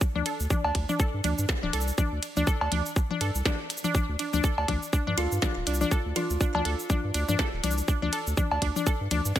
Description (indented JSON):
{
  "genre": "minimal techno",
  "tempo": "122 BPM",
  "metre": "4/4",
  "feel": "swing 57% on 16ths",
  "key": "D minor",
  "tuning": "A4 = 441 Hz",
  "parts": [
    { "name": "electronic kick drum", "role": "drums", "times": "0.0-9.4 s", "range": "none", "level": "-26 LUFS", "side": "equal", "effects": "overdrive" },
    { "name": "minimal click drum kit", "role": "drums", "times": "0.0-9.4 s", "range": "hi-hat, ride cymbal, shaker, snare drum", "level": "-33 LUFS", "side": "equal", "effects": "none" },
    { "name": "resonant blip pluck", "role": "riff", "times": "0.2-9.4 s", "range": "D4 to A4", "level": "-31 LUFS", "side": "left 1 dB", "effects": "chorus, vintage 12-bit sampler grit, sidechain pumping, ping-pong delay" },
    { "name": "saturated sub bass", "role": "bass", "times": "0.2-9.3 s", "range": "D1 to G2", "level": "-29 LUFS", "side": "equal", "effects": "sidechain pumping" },
    { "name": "electronic toms and cowbell", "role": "percussion", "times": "0.2-9.2 s", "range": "none", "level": "-32 LUFS", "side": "left 3 dB", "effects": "digital delay" },
    { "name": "kalimba", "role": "melody", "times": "5.2-6.9 s", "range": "F4", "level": "-34 LUFS", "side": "right 2 dB", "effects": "digital delay" }
  ],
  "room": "digital ambience",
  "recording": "none",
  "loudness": "-25 LUFS",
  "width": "side -12 dB against mid",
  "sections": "0.0-9.4 A section",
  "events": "none",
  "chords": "none",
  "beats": "| 0.01 0.50 1.00 1.49 | 1.98 2.47 2.96 3.46 | 3.95 4.44 4.93 5.42 | 5.91 6.41 6.90 7.39 | 7.88 8.37 8.87 9.36"
}